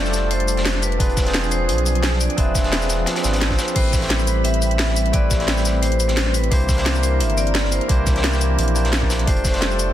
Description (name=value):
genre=liquid drum and bass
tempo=174 BPM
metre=4/4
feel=swing 53% on 16ths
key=A minor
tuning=A4 = 441 Hz
part: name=vibraphone with hard mallets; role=melody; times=0.0-9.9 s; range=B4 to E5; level=-26 LUFS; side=left 1 dB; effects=ping-pong delay
part: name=barky tine electric piano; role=accompaniment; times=0.0-9.9 s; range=A3 to D5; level=-26 LUFS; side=equal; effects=digital delay
part: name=lush unison pad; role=sustained chords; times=0.0-9.9 s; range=E3 to B5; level=-27 LUFS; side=right 1 dB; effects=chorus, sidechain pumping
part: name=warm sub bass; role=bass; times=0.0-9.9 s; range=E1 to C2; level=-21 LUFS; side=equal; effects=none
part: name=crunchy breakbeat drum kit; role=drums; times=0.1-9.9 s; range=hi-hat, snare drum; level=-29 LUFS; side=equal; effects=high-pass filter on hats, high-pass filter on snare, high-pass filter on room
part: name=drum and bass drum kit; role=drums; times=0.1-9.9 s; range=crash cymbal, hi-hat, shaker, snare drum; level=-24 LUFS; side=left 1 dB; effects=none
part: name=electronic kick drum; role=drums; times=1.0-9.5 s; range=none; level=-19 LUFS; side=equal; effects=none
room=light reverb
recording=dense, heavily limited modern master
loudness=-16 LUFS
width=side -12 dB against mid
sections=0.0-9.9 A section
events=none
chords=0.0 F69; 1.0 E7b9b13; 3.8 Am9; 6.5 C7; 9.3 F69